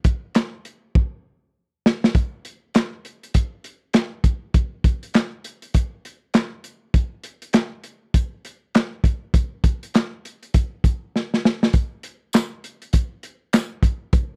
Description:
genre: funk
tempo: 100 BPM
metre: 4/4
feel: swing 60% on 16ths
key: none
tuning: none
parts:
  - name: crunchy breakbeat drum kit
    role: drums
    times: 0.0-14.3 s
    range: handclaps, hi-hat, kick drum, snare drum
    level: -20 LUFS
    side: equal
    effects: none
  - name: tambourine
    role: percussion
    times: 12.3-13.7 s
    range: none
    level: -36 LUFS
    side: equal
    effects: none
room: little or no reverb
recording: dry, close 1970s-style studio recording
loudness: -22 LUFS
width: mono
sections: 0.0-2.1 A section; 2.1-14.4 B section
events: drum fill 0.9-2.1, 11.1-11.7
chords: none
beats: 0.35 0.95 1.55 | 2.15 2.75 3.35 3.95 | 4.55 5.15 5.75 6.34 | 6.95 7.54 8.14 8.74 | 9.34 9.94 10.54 11.14 | 11.74 12.34 12.93 13.53 | 14.13

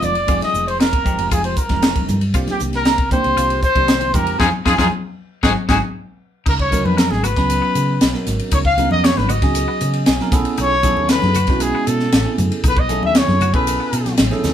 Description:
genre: electric jazz fusion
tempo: 117 BPM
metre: 4/4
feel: straight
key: F dorian, C# minor from 6.5 s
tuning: A4 = 440 Hz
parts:
  - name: warm trumpet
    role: melody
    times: 0.0-14.1 s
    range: G4 to E#5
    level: -20 LUFS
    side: left 1 dB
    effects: none
  - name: concert flute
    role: second line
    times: 0.0-5.8 s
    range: G5 to Eb6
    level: -24 LUFS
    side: right 1 dB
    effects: none
  - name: bell-like tine electric piano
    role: accompaniment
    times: 0.0-14.5 s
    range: Eb3 to G#5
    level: -24 LUFS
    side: right 4 dB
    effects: phaser
  - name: hollow-body short-scale fingered electric bass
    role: bass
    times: 0.0-14.5 s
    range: F1 to C#3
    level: -22 LUFS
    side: equal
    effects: none
  - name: crisp fusion drum kit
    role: drums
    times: 0.0-14.5 s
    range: crash cymbal, hi-hat, kick drum, ride cymbal, snare drum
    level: -19 LUFS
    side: equal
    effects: none
  - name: congas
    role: percussion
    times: 0.0-14.5 s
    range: none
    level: -26 LUFS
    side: left 3 dB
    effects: none
  - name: twangy electric guitar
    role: stabs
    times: 0.3-14.0 s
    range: B3 to Ab4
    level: -26 LUFS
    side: left 6 dB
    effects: none
room: moderate small room reverb, RT60 0.5 s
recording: band playing live in one room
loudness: -14 LUFS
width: side -10 dB against mid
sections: 0.0-6.5 A section; 6.5-14.5 B section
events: band accent 4.4-6.5; drum fill 6.0-6.5, 14.1-14.5; tine electric piano fill 9.8-10.6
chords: 0.0 Fm9; 2.3 Cm9; 4.1 Fm9; 5.4 Ab7; 6.5 C#13sus4; 10.3 B13sus4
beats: | 0.28 0.80 1.32 1.83 | 2.35 2.86 3.38 3.89 | 4.41 4.92 5.44 5.95 | 6.46 6.98 7.50 8.01 | 8.52 9.04 9.55 10.07 | 10.58 11.10 11.61 12.12 | 12.64 13.15 13.67 14.18

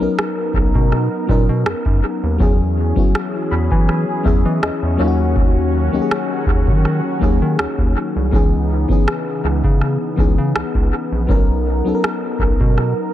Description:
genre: contemporary R&B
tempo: 81 BPM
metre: 4/4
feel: swing 54% on 16ths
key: B major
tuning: A4 = 440 Hz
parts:
  - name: mellow FM electric piano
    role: accompaniment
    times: 0.0-13.1 s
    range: E3 to B5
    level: -21 LUFS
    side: left 4 dB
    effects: chorus, dub echo
  - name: warm analog pad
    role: sustained chords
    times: 0.0-13.1 s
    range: C#3 to A#4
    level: -25 LUFS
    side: right 1 dB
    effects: wide subtle chorus, sidechain pumping
  - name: round analog bass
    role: bass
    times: 0.0-12.9 s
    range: A#1 to E3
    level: -19 LUFS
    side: equal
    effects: none
  - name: booming analog drum machine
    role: drums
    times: 0.2-13.0 s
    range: kick drum, rim click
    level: -18 LUFS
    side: equal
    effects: dub echo
room: light reverb, digital ambience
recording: echo-heavy mix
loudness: -15 LUFS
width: side -12 dB against mid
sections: 0.0-13.1 A section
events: FM electric piano fill 3.1-5.4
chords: 0.0 Bmaj7; 2.4 E6; 5.0 D#m7; 8.3 C#m9; 11.3 Bmaj7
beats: 0.17 0.92 1.66 | 2.40 3.14 3.88 4.62 | 5.36 6.10 6.84 7.58 | 8.32 9.06 9.80 10.54 | 11.29 12.03 12.77

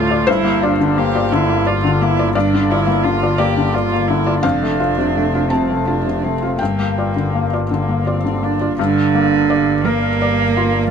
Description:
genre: neoclassical piano and strings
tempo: 57 BPM (dotted quarters)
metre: 6/8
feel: rubato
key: G dorian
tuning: A4 = 442 Hz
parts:
  - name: warm cello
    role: second line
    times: 0.0-10.9 s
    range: D3 to G4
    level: -19 LUFS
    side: right 8 dB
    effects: none
  - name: felt-muted upright piano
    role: accompaniment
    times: 0.0-10.9 s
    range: D2 to A5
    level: -17 LUFS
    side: left 4 dB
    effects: none
  - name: warm double bass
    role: bass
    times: 0.0-10.9 s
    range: F1 to D2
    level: -22 LUFS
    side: equal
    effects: none
room: little or no reverb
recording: close, detailed microphones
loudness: -14 LUFS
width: side -7 dB against mid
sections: 0.0-8.8 A section; 8.8-10.9 B section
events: none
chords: 0.3 Gm7; 4.4 F; 6.6 Gm7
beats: | 0.27 1.31 | 2.35 3.39 | 4.43 5.51 | 6.60 7.70 | 8.78 9.86

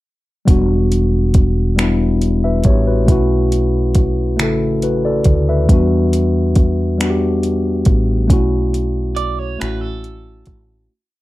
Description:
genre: slow six-eight R&B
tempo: 46 BPM (dotted quarters)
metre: 6/8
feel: straight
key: E dorian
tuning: A4 = 440 Hz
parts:
  - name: mellow tine electric piano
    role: accompaniment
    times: 0.5-10.9 s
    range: C#3 to E5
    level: -17 LUFS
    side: left 1 dB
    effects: none
  - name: mellow fretless electric bass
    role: bass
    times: 0.5-10.9 s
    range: E1 to E2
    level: -18 LUFS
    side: equal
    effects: none
  - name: smooth R&B drum kit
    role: drums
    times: 0.5-10.7 s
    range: finger snaps, hi-hat, kick drum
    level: -14 LUFS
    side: equal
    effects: none
  - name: electric guitar at the edge of break-up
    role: second line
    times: 9.2-10.9 s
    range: A4 to D5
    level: -25 LUFS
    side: right 8 dB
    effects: none
room: light reverb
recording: dark, warm production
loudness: -13 LUFS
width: side -17 dB against mid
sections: 0.5-10.9 verse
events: fade-out 8.3-10.9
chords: 0.5 Em7; 3.1 B7sus4; 5.7 Em7; 8.3 B7sus4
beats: | 0.47 1.78 | 3.08 4.39 | 5.69 7.00 | 8.30 9.61

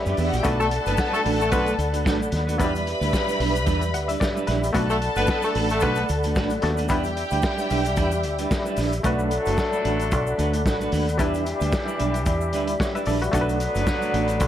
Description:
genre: disco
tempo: 112 BPM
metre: 4/4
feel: swing 56% on 16ths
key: B minor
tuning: A4 = 440 Hz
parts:
  - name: clear studio string section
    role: second line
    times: 0.0-8.7 s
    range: C#4 to B5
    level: -28 LUFS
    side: equal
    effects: none
  - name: muted clav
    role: accompaniment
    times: 0.0-14.5 s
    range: F#3 to F#5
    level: -29 LUFS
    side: left 3 dB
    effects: none
  - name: percussive tonewheel organ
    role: sustained chords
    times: 0.0-14.5 s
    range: G4 to B5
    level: -28 LUFS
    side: left 1 dB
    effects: chorus vibrato, slow rotary speaker
  - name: clean electric guitar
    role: accompaniment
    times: 0.1-14.4 s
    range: G3 to B4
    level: -29 LUFS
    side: right 5 dB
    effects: harmonic tremolo
  - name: fingered electric bass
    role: bass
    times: 0.1-14.5 s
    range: F#1 to F#2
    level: -26 LUFS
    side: equal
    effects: none
  - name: vintage drum kit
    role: drums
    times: 0.1-14.5 s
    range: hi-hat, kick drum, snare drum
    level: -27 LUFS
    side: equal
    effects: none
  - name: egg shaker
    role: percussion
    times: 0.1-14.5 s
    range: none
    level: -44 LUFS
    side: left 9 dB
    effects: none
  - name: clear horn section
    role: stabs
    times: 0.6-14.5 s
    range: E3 to B4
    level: -27 LUFS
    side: left 2 dB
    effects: none
room: light reverb, small room reverb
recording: none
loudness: -20 LUFS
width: side -11 dB against mid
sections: 0.0-9.0 A section; 9.0-14.5 B section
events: clav fill 3.7-4.7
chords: 0.4 Bm7; 2.6 Em7; 4.7 Bm7; 6.9 Em7; 9.0 Bm7; 11.2 Em7; 13.3 Bm7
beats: | 0.45 0.98 1.52 2.06 | 2.60 3.13 3.67 4.21 | 4.75 5.28 5.82 6.36 | 6.89 7.43 7.97 8.51 | 9.04 9.58 10.12 10.65 | 11.19 11.73 12.27 12.80 | 13.34 13.87 14.41

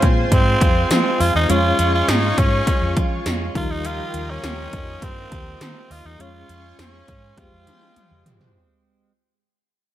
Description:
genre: 1980s-style pop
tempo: 102 BPM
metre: 4/4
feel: straight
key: F minor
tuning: A4 = 436 Hz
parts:
  - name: growling tenor saxophone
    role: melody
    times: 0.0-8.3 s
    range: C4 to F4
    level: -23 LUFS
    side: equal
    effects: none
  - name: soft electric-piano-like synth keys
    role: accompaniment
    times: 0.0-8.6 s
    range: Eb3 to Db5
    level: -27 LUFS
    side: equal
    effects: chorus, tremolo
  - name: lush unison pad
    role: sustained chords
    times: 0.0-8.5 s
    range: Ab3 to Eb6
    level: -28 LUFS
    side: left 1 dB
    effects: chorus
  - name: direct-recorded clean electric guitar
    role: riff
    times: 0.0-9.1 s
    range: F3 to G4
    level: -30 LUFS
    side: right 4 dB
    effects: wide subtle chorus, digital delay
  - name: vintage muted fingered electric bass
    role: bass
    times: 0.0-8.5 s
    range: Eb2 to F3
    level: -23 LUFS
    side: equal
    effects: none
  - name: 80s electronic pad drums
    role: drums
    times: 0.0-8.5 s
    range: hi-hat, kick drum, snare drum, tambourine, toms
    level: -20 LUFS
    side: equal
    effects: gated reverb on snare and toms, overdrive
room: light reverb, digital ambience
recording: none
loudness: -16 LUFS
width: side -12 dB against mid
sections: 0.0-8.6 A section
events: fade-out 0.0-8.6; drum fill 7.4-8.6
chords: 0.0 Fm; 1.5 Db/F; 3.6 Ebadd9; 6.2 Db/F; 7.4 Fmadd9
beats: 0.32 0.91 | 1.49 2.08 2.67 3.26 | 3.85 4.44 5.02 5.61 | 6.20 6.79 7.38 7.96

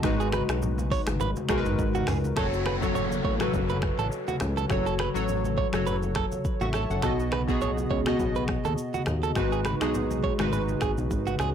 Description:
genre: afrobeats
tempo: 103 BPM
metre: 4/4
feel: swing 55% on 16ths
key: F# dorian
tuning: A4 = 440 Hz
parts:
  - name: warm analog keys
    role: accompaniment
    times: 0.0-11.5 s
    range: B2 to C#6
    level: -28 LUFS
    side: left 1 dB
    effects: chorus
  - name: fat analog bass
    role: bass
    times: 0.0-11.5 s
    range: F#1 to D#2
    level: -30 LUFS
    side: equal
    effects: none
  - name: deep house drum kit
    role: drums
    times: 0.0-11.5 s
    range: finger snaps, hi-hat, kick drum, rim click, shaker, toms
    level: -31 LUFS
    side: equal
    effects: soft clipping on snare
  - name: congas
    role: percussion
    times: 0.0-11.5 s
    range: none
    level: -36 LUFS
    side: left 2 dB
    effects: none
  - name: direct-recorded clean electric guitar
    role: riff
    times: 0.2-11.5 s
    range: F#4 to C#5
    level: -32 LUFS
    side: right 9 dB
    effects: digital delay
  - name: downlifter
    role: sound effects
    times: 2.4-7.0 s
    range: none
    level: -38 LUFS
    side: equal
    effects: none
room: moderate studio reverb, RT60 0.5 s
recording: blown-out, overdriven recording, overdrive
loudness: -24 LUFS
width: side -8 dB against mid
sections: 0.0-2.4 A section; 2.4-11.5 B section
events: none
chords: 0.0 G#m7; 2.4 F#m; 7.0 B; 9.4 G#m7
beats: | 0.04 0.62 1.21 1.79 | 2.37 2.96 3.54 4.12 | 4.70 5.29 5.87 6.45 | 7.03 7.62 8.20 8.78 | 9.36 9.95 10.53 11.11

